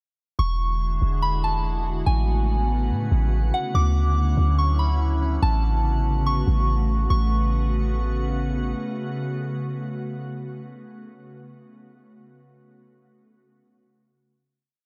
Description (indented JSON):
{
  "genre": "hip hop, atmospheric cloud-rap",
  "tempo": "143 BPM",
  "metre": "4/4",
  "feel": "half-time",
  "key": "A major",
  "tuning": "A4 = 438 Hz",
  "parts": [
    { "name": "soft synth bell", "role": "melody", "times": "0.4-8.3 s", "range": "F#5 to D6", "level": "-31 LUFS", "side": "equal", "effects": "chorus, tape echo" },
    { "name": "glassy FM pad", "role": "sustained chords", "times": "0.7-11.1 s", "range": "C#3 to F#4", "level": "-32 LUFS", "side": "equal", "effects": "ensemble chorus, built-in reverb" },
    { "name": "warm 808-style bass", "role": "bass", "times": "0.4-8.7 s", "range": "E1 to A2", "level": "-24 LUFS", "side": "equal", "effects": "none" },
    { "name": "drifting glass-harmonics texture", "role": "texture", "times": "0.9-11.1 s", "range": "C#4 to F#5", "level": "-42 LUFS", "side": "equal", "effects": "chorus, built-in reverb" }
  ],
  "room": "light reverb, digital ambience",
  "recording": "none",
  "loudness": "-23 LUFS",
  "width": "mono",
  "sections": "0.4-7.1 breakdown; 7.1-10.5 final chord",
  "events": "none",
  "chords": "0.4 E9; 2.1 A69; 3.7 Dmaj9; 5.4 A69",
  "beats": "| 0.39 0.81 1.23 1.65 | 2.06 2.48 2.90 3.32 | 3.74 4.16 4.58 5.00 | 5.42 5.84 6.26 6.68 | 7.10 7.52 7.94 8.36 | 8.78 9.20 9.62 10.04"
}